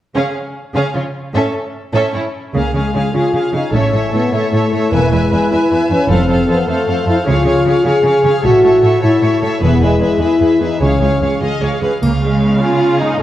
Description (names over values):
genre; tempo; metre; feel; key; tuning
cinematic, heroic adventure film score; 101 BPM (dotted quarters); 6/8; straight; unclear; A4 = 441 Hz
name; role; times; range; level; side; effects
warm symphonic violin section; melody; 0.2-13.2 s; Db5 to G#5; -25 LUFS; left 2 dB; none
rich symphonic violin section; second line; 0.2-13.2 s; E4 to E5; -23 LUFS; left 1 dB; none
warm symphonic viola section; accompaniment; 0.2-13.2 s; Ab3 to B4; -20 LUFS; right 2 dB; none
rich symphonic cello section; bass; 0.2-13.2 s; Db2 to Db3; -19 LUFS; right 2 dB; none
dark French horn section; sustained chords; 2.5-11.4 s; Ab3 to Ab4; -14 LUFS; left 1 dB; none
concert harp; arpeggios; 2.5-13.2 s; A2 to F5; -22 LUFS; left 4 dB; none
rich symphonic double bass section; bass; 2.6-12.4 s; E1 to Db2; -18 LUFS; right 2 dB; none
triangle; percussion; 12.0-12.8 s; none; -38 LUFS; equal; none
room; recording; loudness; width
wet scoring stage reverb, RT60 1.4 s; worn, warbling old tape, cassette tape, warbly pitch drift; -12 LUFS; side -13 dB against mid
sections
0.2-2.5 A section; 2.5-12.0 B section; 12.0-13.2 B section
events
none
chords
0.2 Db; 1.3 A; 2.5 Db; 3.7 A; 4.9 E; 6.1 F; 7.3 Db; 8.4 A; 9.6 E; 10.8 Db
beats
| 0.16 0.76 | 1.35 1.94 | 2.55 3.14 | 3.74 4.33 | 4.93 5.52 | 6.10 6.69 | 7.27 7.86 | 8.44 9.03 | 9.62 10.21 | 10.80 11.41 | 12.02 12.61 | 13.21